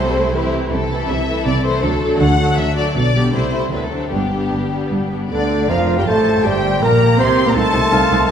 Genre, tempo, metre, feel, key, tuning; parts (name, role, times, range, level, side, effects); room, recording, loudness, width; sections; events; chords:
quick classical-period movement for symphony orchestra; 160 BPM; 3/4; rubato; G major, G minor from 5.3 s; A4 = 438 Hz
rich studio violin section; melody; 0.0-8.3 s; G4 to C6; -22 LUFS; left 4 dB
rich symphonic violin section; second line; 0.0-8.3 s; B3 to C6; -24 LUFS; left 2 dB
dark studio viola section; accompaniment; 0.0-8.3 s; D3 to Eb4; -23 LUFS; right 1 dB
rich studio cello section; bass; 0.0-8.2 s; C2 to D3; -22 LUFS; right 2 dB
rich studio double bass section; bass; 0.0-8.3 s; F1 to D2; -21 LUFS; right 1 dB
bright clarinet; second line; 5.3-8.3 s; D4 to C5; -23 LUFS; left 2 dB
mellow large flute ensemble; second line; 5.3-8.3 s; D5 to C6; -23 LUFS; right 2 dB
mellow bassoon; accompaniment; 5.3-8.3 s; D3 to C4; -20 LUFS; right 1 dB
mellow French horn section; sustained chords; 5.3-8.3 s; D3 to C4; -21 LUFS; left 3 dB
clear cor anglais; second line; 5.7-8.3 s; G4 to F5; -24 LUFS; right 1 dB
wet scoring stage reverb, RT60 1.7 s; heard from further back in the room; -14 LUFS; side -8 dB against mid
0.0-5.3 A section; 5.3-8.3 B section
0.0 Am/C; 1.8 D; 3.0 G/B; 3.3 Am7/C; 3.7 D7; 4.1 G; 5.3 Gm; 6.5 Gmadd11; 7.6 Adim/C